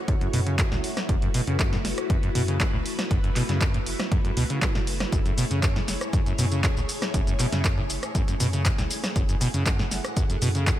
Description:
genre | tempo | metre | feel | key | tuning
acid house | 119 BPM | 4/4 | straight | F# minor | A4 = 440 Hz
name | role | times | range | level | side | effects
string machine, full ensemble | sustained chords | 0.0-10.8 s | A3 to F#5 | -32 LUFS | equal | phaser, ensemble chorus, sidechain pumping
acid bass, saw | riff | 0.1-10.7 s | F#2 to C#3 | -28 LUFS | equal | overdrive, lush chorus, sidechain pumping, digital delay
electronic kick drum | drums | 0.1-10.8 s | none | -25 LUFS | equal | none
punchy analog drum machine | drums | 0.1-10.8 s | handclaps, hi-hat, rim click, shaker, snare drum | -30 LUFS | equal | none
warm sub bass | bass | 0.3-10.7 s | F#1 to F#2 | -29 LUFS | equal | sidechain pumping
room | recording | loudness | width
little or no reverb | none | -22 LUFS | side -13 dB against mid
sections
0.0-10.8 A section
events
none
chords
0.0 F#m7

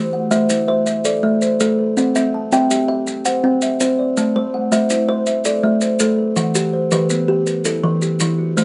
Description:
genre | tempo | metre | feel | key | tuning
southern african traditional, mbira-style interlocking cycle | 109 BPM (dotted quarters) | 12/8 | straight | A dorian | A4 = 437 Hz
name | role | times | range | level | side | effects
kalimba | arpeggios | 0.0-8.6 s | E3 to G5 | -20 LUFS | equal | none
kalimba | arpeggios | 0.0-8.6 s | E3 to A5 | -23 LUFS | equal | none
maracas | percussion | 0.3-8.6 s | none | -27 LUFS | equal | none
room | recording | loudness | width
light reverb | nothing above 10.8 kHz | -18 LUFS | mono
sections
0.0-8.6 A section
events
none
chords
0.0 Am; 2.0 C; 4.2 Am; 6.4 Em

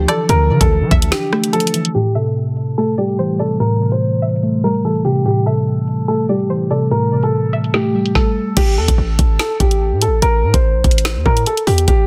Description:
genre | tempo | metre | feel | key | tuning
hip hop, drill | 145 BPM | 4/4 | half-time | A phrygian | A4 = 440 Hz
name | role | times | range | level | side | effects
dark baby grand piano | melody | 0.0-12.0 s | G4 to C5 | -22 LUFS | equal | none
string-like resonator pluck | second line | 0.0-7.7 s | C5 to E5 | -29 LUFS | equal | chorus, digital delay
muted felt-like synth keys | accompaniment | 0.0-8.6 s | A2 to D4 | -19 LUFS | equal | chorus
hard-hitting 808-style bass | bass | 0.0-1.1, 8.6-12.1 s | A1 to F3 | -19 LUFS | equal | none
drill drum kit | drums | 0.1-12.0 s | crash cymbal, hi-hat, kick drum, rim click, snare drum | -18 LUFS | equal | none
room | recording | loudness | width
digital ambience | dense, heavily limited modern master, low-pass filter | -16 LUFS | mono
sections
0.0-1.9 A section; 1.9-8.6 B section; 8.6-12.1 C section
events
break 1.1-1.9; filter sweep 1.9-8.6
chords
0.0 Dmadd9; 1.9 Am7; 8.6 A7(no3)

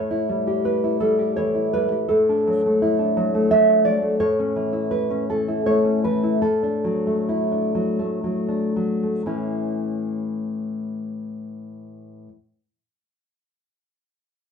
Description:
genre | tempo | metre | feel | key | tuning
romantic piece for solo classical guitar | 54-86 BPM | 3/4 | rubato | A major | A4 = 436 Hz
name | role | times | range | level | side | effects
nylon-string guitar | solo | 0.0-12.3 s | A2 to E5 | -20 LUFS | equal | none
room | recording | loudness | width
wet studio reverb, RT60 0.7 s | band playing live in one room | -19 LUFS | side -6 dB against mid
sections
0.0-9.3 A section; 9.3-14.5 B section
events
slowing down 3.2-9.3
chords
0.0 A7; 2.1 D/A; 4.2 A; 6.4 D/A; 9.3 A

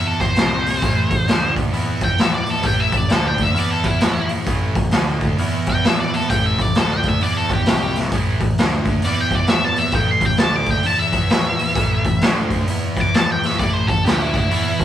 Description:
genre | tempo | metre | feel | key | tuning
blues rock power trio and southern rock | 132 BPM | 4/4 | swing 63% on 8ths | A minor | A4 = 440 Hz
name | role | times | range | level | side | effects
octave-fuzz lead guitar | melody | 0.0-14.8 s | E4 to D6 | -21 LUFS | equal | distortion
sludgy distorted guitar | riff | 0.0-14.8 s | A2 to E4 | -24 LUFS | equal | overdrive
growling picked electric bass | bass | 0.0-14.8 s | A1 to E2 | -26 LUFS | equal | overdrive
raw garage drum kit | drums | 0.2-14.8 s | hi-hat, kick drum, snare drum | -18 LUFS | equal | none
room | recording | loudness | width
light reverb | band playing live in one room | -16 LUFS | side -11 dB against mid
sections
0.0-14.8 A section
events
none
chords
0.4 C5; 0.8 Am; 1.3 D5; 1.7 E5; 2.7 A5; 3.1 D5; 3.6 E5; 4.5 A5; 4.9 D5; 5.4 E5; 6.3 A5; 6.8 D5; 7.2 E5; 7.7 C5; 8.1 A5; 8.6 D5; 9.0 E5; 9.9 A5; 10.4 D5; 10.9 E5; 11.8 A5; 12.2 D5; 12.7 E5; 13.6 A5; 14.1 D5

